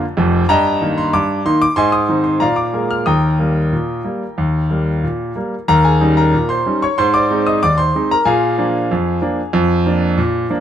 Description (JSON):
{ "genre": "ragtime piano", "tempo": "93 BPM", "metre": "2/4", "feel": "straight", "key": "Eb major", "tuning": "A4 = 441 Hz", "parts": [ { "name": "clear concert grand piano", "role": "solo", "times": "0.0-10.6 s", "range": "F1 to F6", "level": "-13 LUFS", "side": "equal", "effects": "none" } ], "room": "light reverb", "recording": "minimal, uncompressed stereo recording", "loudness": "-13 LUFS", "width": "side -9 dB against mid", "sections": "0.0-5.7 A section; 5.7-10.6 A section", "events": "none", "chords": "0.5 Eb/G; 1.8 Ab; 2.4 Bb7; 3.1 Eb; 5.7 Eb7; 7.0 Ab; 8.3 Bb7/F" }